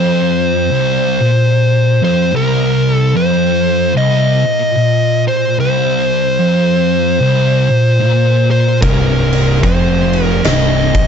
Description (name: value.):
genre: stoner and doom metal.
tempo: 74 BPM.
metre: 4/4.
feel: swing 62% on 8ths.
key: C minor.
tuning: A4 = 440 Hz.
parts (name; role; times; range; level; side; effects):
fuzz lead guitar; melody; 0.0-11.1 s; Bb4 to Eb5; -16 LUFS; left 2 dB; distortion, digital delay.
thick fuzz guitar; riff; 0.0-11.1 s; C2 to Bb2; -16 LUFS; left 8 dB; distortion.
thick fuzz guitar; riff; 0.0-11.1 s; C2 to Bb2; -15 LUFS; right 8 dB; distortion.
fuzz fingered electric bass; bass; 8.8-11.1 s; C1 to Bb1; -18 LUFS; equal; overdrive.
oversized low-tuned drum kit; drums; 8.8-11.1 s; crash cymbal, kick drum, snare drum; -16 LUFS; equal; none.
room: little or no reverb.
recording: dark, warm production, nothing above 7.8 kHz.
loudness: -10 LUFS.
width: side -7 dB against mid.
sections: 0.0-11.1 A section.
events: none.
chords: none.